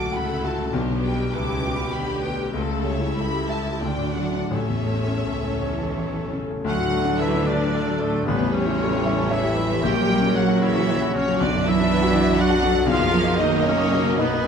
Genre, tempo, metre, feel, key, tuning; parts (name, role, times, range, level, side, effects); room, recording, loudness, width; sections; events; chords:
classical, romantic movement for piano and orchestra; 80-123 BPM; 3/4; rubato; D major; A4 = 440 Hz
warm concert grand piano; melody; 0.0-14.5 s; A1 to D#6; -23 LUFS; left 2 dB
warm studio violin section; melody; 0.0-14.5 s; A4 to D6; -29 LUFS; right 1 dB
rich studio violin section; second line; 0.0-14.5 s; G3 to E5; -32 LUFS; equal
warm studio viola section; accompaniment; 0.0-14.4 s; C#3 to A4; -29 LUFS; right 2 dB
rich studio cello section; bass; 0.0-14.5 s; C#2 to G3; -29 LUFS; right 3 dB
rich studio double bass section; bass; 0.0-14.5 s; A1 to D2; -31 LUFS; right 3 dB
mellow cor anglais; second line; 6.7-14.5 s; A3 to G4; -30 LUFS; right 1 dB
clear French horn section; sustained chords; 6.7-14.5 s; A3 to G4; -29 LUFS; left 4 dB
mellow clarinet; second line; 7.2-14.5 s; C#4 to C#5; -32 LUFS; left 3 dB
moderate recital hall reverb, RT60 1.5 s; close, detailed microphones; -19 LUFS; side -7 dB against mid
0.0-6.7 A section; 6.7-14.5 B section
0.0 D; 0.7 G/B; 2.6 A7/C#; 3.8 D; 4.5 A; 6.7 D; 8.3 A7; 9.8 F#7/A#; 11.4 Bm; 12.9 Bmaj7